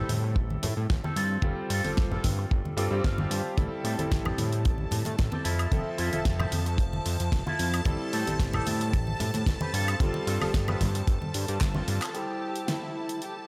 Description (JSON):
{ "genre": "nu-disco, nu disco", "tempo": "112 BPM", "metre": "4/4", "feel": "swing 53% on 16ths", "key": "A minor", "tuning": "A4 = 439 Hz", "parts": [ { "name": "clear electric grand piano", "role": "accompaniment", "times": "0.0-13.5 s", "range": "F3 to E5", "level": "-37 LUFS", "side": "equal", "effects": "lush chorus, sidechain pumping, low-pass filter, analog delay" }, { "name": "electric guitar with an envelope filter", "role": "riff", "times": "0.0-12.1 s", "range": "C4 to A5", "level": "-38 LUFS", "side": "equal", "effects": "lush chorus, analog delay" }, { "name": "fat analog bass", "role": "bass", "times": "0.0-12.0 s", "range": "F1 to A2", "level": "-32 LUFS", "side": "equal", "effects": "none" }, { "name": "pop drum kit", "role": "drums", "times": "0.1-13.3 s", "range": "handclaps, hi-hat, snare drum, woodblock", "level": "-38 LUFS", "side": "equal", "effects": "none" }, { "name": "congas", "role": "percussion", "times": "0.1-11.9 s", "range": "none", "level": "-38 LUFS", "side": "equal", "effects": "none" }, { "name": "kick drum", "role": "drums", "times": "0.4-11.7 s", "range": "none", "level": "-28 LUFS", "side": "equal", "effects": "none" }, { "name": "string machine, full ensemble", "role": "sustained chords", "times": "3.6-13.5 s", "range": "A5", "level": "-41 LUFS", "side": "equal", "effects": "ensemble chorus, sidechain pumping" }, { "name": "dark studio violin section", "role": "melody", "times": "12.1-13.3 s", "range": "E4 to A4", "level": "-38 LUFS", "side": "equal", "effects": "delay" } ], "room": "moderate lush hall reverb, RT60 2.0 s", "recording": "dreamy mix soaked in reverb", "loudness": "-28 LUFS", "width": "mono", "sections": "0.0-12.1 A section; 12.1-13.5 B section", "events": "clean electric guitar fill 2.5-3.6; drum fill 11.6-12.1", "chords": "0.0 Am7; 1.2 G9sus4; 3.6 Am7; 5.5 Fmaj7; 7.9 Am7; 9.7 G9sus4; 12.1 Am7", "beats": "0.36 0.90 | 1.43 1.97 2.51 3.04 | 3.58 4.11 4.65 5.18 | 5.72 6.26 6.79 7.33 | 7.86 8.40 8.93 9.47 | 10.01 10.54 11.08 11.61 | 12.15 12.68 13.22" }